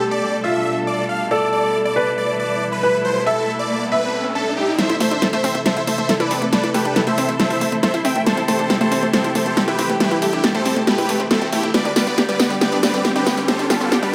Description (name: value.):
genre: uplifting trance.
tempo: 138 BPM.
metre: 4/4.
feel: straight.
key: A minor.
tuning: A4 = 440 Hz.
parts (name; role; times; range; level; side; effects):
big supersaw lead; melody; 0.0-14.1 s; C4 to G5; -24 LUFS; equal; phaser, dub echo.
felt-muted upright piano; second line; 0.0-4.7 s; F4 to E5; -23 LUFS; equal; digital delay.
dark symphonic string section; sustained chords; 0.0-14.1 s; B2 to A4; -28 LUFS; equal; none.
riser; sound effects; 2.8-14.1 s; none; -31 LUFS; equal; none.
unison pluck; arpeggios; 4.8-14.1 s; G3 to A4; -25 LUFS; equal; dub echo.
big-room dance drum kit; drums; 4.8-14.1 s; hi-hat, snare drum, tambourine; -22 LUFS; equal; none.
tight sequencer bass; bass; 4.9-14.1 s; G1 to A1; -33 LUFS; equal; none.
room: moderate lush hall reverb, RT60 2.0 s.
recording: high-pass filter.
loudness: -19 LUFS.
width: mono.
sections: 0.0-4.8 A section; 4.8-14.1 B section.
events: riser 2.8-4.8; build-up 4.8-14.1; drum fill 4.8-14.1.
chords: 0.0 Gadd9; 4.8 Am; 11.7 Gadd9.